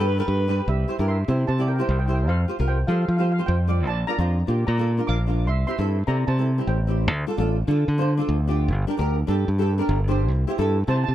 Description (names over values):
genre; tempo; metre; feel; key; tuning
calypso; 150 BPM; 4/4; swing 53% on 16ths; unclear; A4 = 439 Hz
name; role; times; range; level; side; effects
mellow alto saxophone; second line; 0.0-0.7 s; Bb4 to B4; -30 LUFS; left 2 dB; tape echo
nylon-string guitar; accompaniment; 0.0-11.1 s; C4 to D5; -27 LUFS; equal; double-tracked left and right
modern bright fingered electric bass; bass; 0.0-11.1 s; G1 to F3; -21 LUFS; equal; none
steel pan; melody; 0.7-7.0, 10.9-11.1 s; G4 to D6; -31 LUFS; right 1 dB; none
room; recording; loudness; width
little or no reverb; rough home demo mix; -20 LUFS; side -12 dB against mid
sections
0.7-11.1 A section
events
none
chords
0.0 G; 0.7 C; 2.3 Fsus2; 3.9 Bb; 5.5 C; 7.1 Dm; 8.7 Gm; 10.3 C